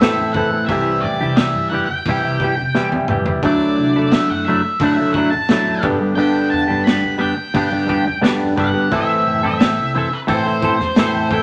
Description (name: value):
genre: psychedelic rock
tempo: 88 BPM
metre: 4/4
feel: straight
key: A dorian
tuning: A4 = 439 Hz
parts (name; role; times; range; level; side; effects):
- octave-fuzz lead guitar; melody; 0.0-11.4 s; B4 to B5; -24 LUFS; equal; distortion
- semi-hollow electric guitar; riff; 0.0-11.4 s; G2 to A4; -20 LUFS; equal; phaser
- upright bass; bass; 0.0-11.4 s; F#1 to C3; -30 LUFS; equal; none
- crunchy breakbeat drum kit; drums; 0.0-11.4 s; hi-hat, kick drum, snare drum, toms; -22 LUFS; equal; none
- congas; percussion; 0.2-11.4 s; none; -35 LUFS; equal; none
room: wet studio reverb, RT60 1.0 s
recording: vinyl crackle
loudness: -17 LUFS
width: mono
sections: 0.0-11.4 A section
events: drum fill 2.8-3.4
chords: 0.0 Am; 0.7 C; 3.4 Dadd9; 5.8 G; 8.9 Am